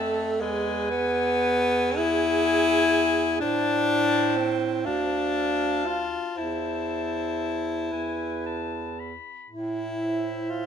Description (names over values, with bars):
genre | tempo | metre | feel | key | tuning
classical, lyrical piece for single-reed quartet | 40 BPM (dotted quarters) | 6/8 | uneven beats, rubato | A minor | A4 = 440 Hz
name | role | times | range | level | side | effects
bright clarinet | melody | 0.0-10.7 s | E5 to B5 | -31 LUFS | left 7 dB | none
clear alto saxophone | second line | 0.0-10.7 s | G#4 to F5 | -32 LUFS | right 12 dB | none
clear tenor saxophone | accompaniment | 0.0-10.7 s | G#3 to F4 | -25 LUFS | left 3 dB | none
bright bass clarinet | bass | 0.0-10.7 s | D2 to A2 | -30 LUFS | right 5 dB | none
room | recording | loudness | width
moderate recital hall reverb, RT60 1.7 s | none | -23 LUFS | side -8 dB against mid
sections
0.0-10.7 A section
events
none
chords
0.4 E; 3.4 Am; 4.9 Dm; 6.4 Am/E; 9.5 Am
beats
| 0.40 1.97 | 3.41 4.86 | 6.37 7.92 | 9.50